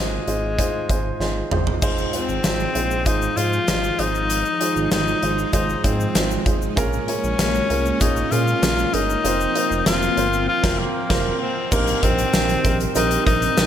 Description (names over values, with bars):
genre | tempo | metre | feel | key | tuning
1980s-style pop | 97 BPM | 4/4 | straight | unclear | A4 = 440 Hz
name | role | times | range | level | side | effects
breathy tenor saxophone | melody | 0.0-13.7 s | Ab3 to F4 | -23 LUFS | left 3 dB | ping-pong delay
dark baby grand piano | accompaniment | 0.0-13.7 s | Ab2 to Db5 | -25 LUFS | right 3 dB | none
smooth synth bass | bass | 0.0-13.7 s | F1 to Bb2 | -25 LUFS | equal | none
huge arena drum kit | drums | 0.3-13.7 s | crash cymbal, hi-hat, kick drum, snare drum, tambourine, toms | -23 LUFS | equal | gated reverb
string machine, full ensemble | sustained chords | 1.8-13.7 s | Eb3 to Eb4 | -28 LUFS | equal | phaser, ensemble chorus
tube shaker | percussion | 1.8-13.7 s | none | -36 LUFS | left 10 dB | none
room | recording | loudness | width
light reverb, studio ambience | none | -18 LUFS | side -10 dB against mid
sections
0.0-1.8 A section; 1.8-11.7 B section; 11.7-13.7 C section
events
drum fill 1.2-1.8; band accent 10.5-11.7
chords
0.0 Fm7/Ab; 1.8 Ab6; 4.0 Fm7/Ab; 6.8 Bbm7; 9.2 Fsus4; 11.7 Eb6/Bb